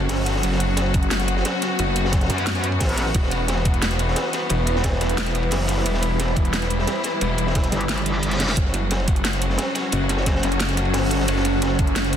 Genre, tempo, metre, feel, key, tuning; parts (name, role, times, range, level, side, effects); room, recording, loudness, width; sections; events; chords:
dark technical drum and bass; 177 BPM; 4/4; straight; F# phrygian; A4 = 440 Hz
rich studio string section; sustained chords; 0.0-12.2 s; E3 to F#4; -28 LUFS; left 1 dB; sidechain pumping
snarling distorted saw bass; bass; 0.0-12.2 s; E1 to G1; -23 LUFS; equal; overdrive
crunchy breakbeat drum kit; drums; 0.0-12.2 s; hi-hat, ride cymbal, snare drum; -28 LUFS; equal; high-pass filter on cymbals, high-pass filter on hats, high-pass filter on snare, high-pass filter on room
granular cloud pad; texture; 0.0-12.2 s; G3 to F#5; -27 LUFS; equal; built-in reverb, sidechain pumping
dubstep drum kit; drums; 0.1-12.2 s; hi-hat, snare drum; -26 LUFS; right 1 dB
electronic kick drum; drums; 0.9-11.9 s; -21 LUFS; equal
metallic wobble bass; bass; 2.3-3.1, 7.7-8.6 s; G1 to F#2; -23 LUFS; equal; chorus
reverse cymbal; sound effects; 8.0-8.6 s; -28 LUFS; equal
light reverb, small room ambience; dense, heavily limited modern master; -19 LUFS; side -9 dB against mid
0.0-12.2 A section
reverse cymbal 8.0-8.6; kick drops out 8.2-8.6; drum fill 8.4
0.0 F#m; 3.1 Emadd9; 8.6 F#m